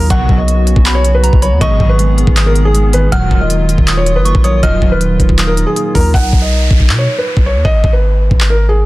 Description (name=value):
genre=hip hop, trap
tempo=159 BPM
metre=4/4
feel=half-time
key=unclear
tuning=A4 = 441 Hz
part: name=felt-muted upright piano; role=melody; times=0.0-8.9 s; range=Ab4 to F#5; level=-17 LUFS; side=equal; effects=low-pass filter
part: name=soft synth bell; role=second line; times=0.0-6.1 s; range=Bb5 to F6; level=-23 LUFS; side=right 1 dB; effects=chorus, ping-pong delay
part: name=concert harp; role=accompaniment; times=0.0-8.9 s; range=Ab2 to C#5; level=-19 LUFS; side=right 1 dB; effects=low-pass filter
part: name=hollow soft pad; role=sustained chords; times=0.0-6.1 s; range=C#3 to Ab4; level=-23 LUFS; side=equal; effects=chorus
part: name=long sustained 808-style bass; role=bass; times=0.0-8.9 s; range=Eb1 to B2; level=-12 LUFS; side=equal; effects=none
part: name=big bright polysynth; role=stabs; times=0.1-4.9 s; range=Bb1 to F#3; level=-21 LUFS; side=equal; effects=analog chorus, ping-pong delay
part: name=trap drum kit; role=drums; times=0.1-8.5 s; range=handclaps, hi-hat, kick drum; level=-13 LUFS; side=equal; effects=none
part: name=downlifter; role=sound effects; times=6.1-8.9 s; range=none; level=-23 LUFS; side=right 1 dB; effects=none
room=digital ambience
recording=dense, heavily limited modern master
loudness=-9 LUFS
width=side -18 dB against mid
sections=0.0-6.1 A section; 6.1-8.9 B section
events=hi-hats muted 6.1-8.9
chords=0.1 Bsus2; 1.6 Abm; 3.1 Ebmadd9; 6.1 B; 7.7 Abm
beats=| 0.10 0.48 0.86 1.24 | 1.61 1.99 2.37 2.74 | 3.12 3.50 3.88 4.25 | 4.63 5.01 5.39 5.76 | 6.14 6.52 6.89 7.27 | 7.65 8.03 8.40 8.78